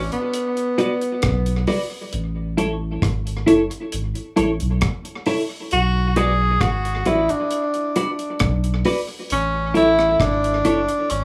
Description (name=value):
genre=roots reggae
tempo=67 BPM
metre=4/4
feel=straight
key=B dorian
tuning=A4 = 440 Hz
part: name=warm tenor saxophone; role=melody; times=0.0-11.2 s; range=B3 to G#4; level=-23 LUFS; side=equal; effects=tape echo
part: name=clean electric guitar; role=accompaniment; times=0.0-10.8 s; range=E4 to D5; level=-22 LUFS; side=equal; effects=lush chorus, tape echo
part: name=soft dub sub bass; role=bass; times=0.0-11.2 s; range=F#1 to B1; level=-25 LUFS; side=equal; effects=none
part: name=deep reggae drum kit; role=drums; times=0.1-11.2 s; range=hi-hat, kick drum, rim click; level=-28 LUFS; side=equal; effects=tape echo
room=moderate studio ambience, RT60 0.5 s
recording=small room ambience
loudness=-21 LUFS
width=mono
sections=0.0-11.2 A section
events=none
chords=0.0 Bm; 2.1 A; 5.7 Bm; 9.3 A